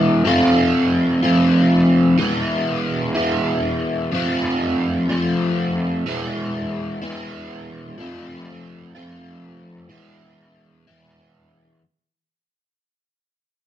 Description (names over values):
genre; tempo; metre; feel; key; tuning
rock; 62 BPM (dotted quarters); 6/8; straight; unclear; A4 = 436 Hz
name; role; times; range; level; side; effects
crunchy overdriven guitar; solo; 0.0-11.8 s; E3 to F4; -18 LUFS; equal; rotary speaker
room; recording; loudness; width
light reverb; band playing live in one room; -16 LUFS; side -11 dB against mid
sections
0.0-11.8 A section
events
fade-out 0.0-11.8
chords
0.3 F; 2.2 E; 4.1 F; 6.1 E; 8.0 F; 9.9 E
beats
| 0.26 1.23 | 2.19 3.16 | 4.12 5.09 | 6.05 7.02 | 7.98 8.95 | 9.91 10.87